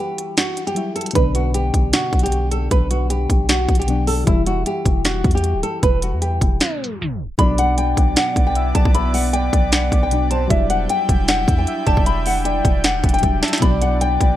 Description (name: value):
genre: hip hop, trap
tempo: 154 BPM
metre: 4/4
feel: half-time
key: B minor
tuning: A4 = 442 Hz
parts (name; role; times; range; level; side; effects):
- nylon-string guitar; melody; 0.0-14.4 s; E4 to B5; -22 LUFS; left 1 dB; wide subtle chorus
- soft electric-piano-like synth keys; accompaniment; 0.0-14.4 s; B2 to E4; -26 LUFS; left 3 dB; chorus
- trap drum kit; drums; 0.2-14.3 s; hi-hat, kick drum, snare drum; -18 LUFS; equal; none
- warm 808-style bass; bass; 1.2-14.4 s; D1 to E2; -20 LUFS; equal; none
- soft octave-layered synth lead; second line; 7.4-14.0 s; C5 to E5; -28 LUFS; right 4 dB; chorus, digital delay
- airy breathy pad; sustained chords; 7.4-14.4 s; B3 to G5; -27 LUFS; right 1 dB; chorus
room: light reverb, digital ambience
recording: bright 1980s-style digital production, tape stop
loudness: -16 LUFS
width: side -13 dB against mid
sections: 0.0-7.4 A section; 7.4-14.4 B section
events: break 0.0-1.2, 6.6-7.4; tape stop 6.6-7.4; drum fill 13.2-13.6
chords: 0.0 Emadd9; 1.2 Bm; 4.3 Emadd9; 7.4 Bm; 10.5 Emadd9; 13.6 Bm